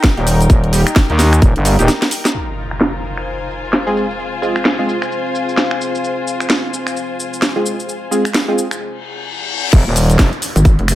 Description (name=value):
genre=bass house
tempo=130 BPM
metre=4/4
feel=swing 60% on 16ths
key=F minor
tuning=A4 = 440 Hz
part: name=electronic kick drum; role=drums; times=0.0-1.5, 9.7-10.8 s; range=none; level=-10 LUFS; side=equal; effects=small room ambience
part: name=garage drum kit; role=drums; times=0.0-10.9 s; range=cabasa, crash cymbal, finger snaps, hi-hat, snare drum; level=-18 LUFS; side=equal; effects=low-pass filter on hats, small room ambience, low-pass filter on perc, low-pass filter on snare, low-pass filter on cymbals
part: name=muted studio string section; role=texture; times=0.0-8.8 s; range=Eb4 to Ab5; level=-24 LUFS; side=left 3 dB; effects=sidechain pumping
part: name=band-passed chord stab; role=stabs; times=0.2-8.7 s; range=G3 to Ab4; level=-20 LUFS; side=right 1 dB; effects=chorus, vintage 12-bit sampler grit, sidechain pumping, dub echo
part: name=growling FM bass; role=bass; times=0.2-1.9, 9.7-10.3 s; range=Eb1 to Eb2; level=-12 LUFS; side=equal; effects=tube saturation, sidechain pumping
part: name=deep dark ambient pad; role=sustained chords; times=4.1-9.7 s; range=C4 to F5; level=-26 LUFS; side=left 2 dB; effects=chorus, built-in reverb, sidechain pumping
part: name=impact, reverse cymbal and downlifter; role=sound effects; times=2.3-4.2, 9.0-10.9 s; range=none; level=-24 LUFS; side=left 2 dB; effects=none
part: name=pulsing pluck wobble bass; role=bass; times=10.6-10.9 s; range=F1 to Ab1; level=-12 LUFS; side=equal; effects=chorus, overdrive, sidechain pumping
room=light reverb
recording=none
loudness=-13 LUFS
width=side -14 dB against mid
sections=0.0-2.3 A section; 2.3-9.7 B section; 9.7-10.9 C section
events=break 1.9-2.3, 8.8-9.7; drum fill 1.9-2.3; impact 2.3-4.2; filter sweep on drum 2.3-9.7; reverse cymbal 9.0-9.7; drop 9.7-10.9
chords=0.0 Eb; 2.3 Fm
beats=0.04 | 0.50 0.96 1.42 1.88 | 2.34 2.81 3.27 3.73 | 4.19 4.65 5.11 5.57 | 6.04 6.50 6.96 7.42 | 7.88 8.34 8.80 9.27 | 9.73 10.19 10.65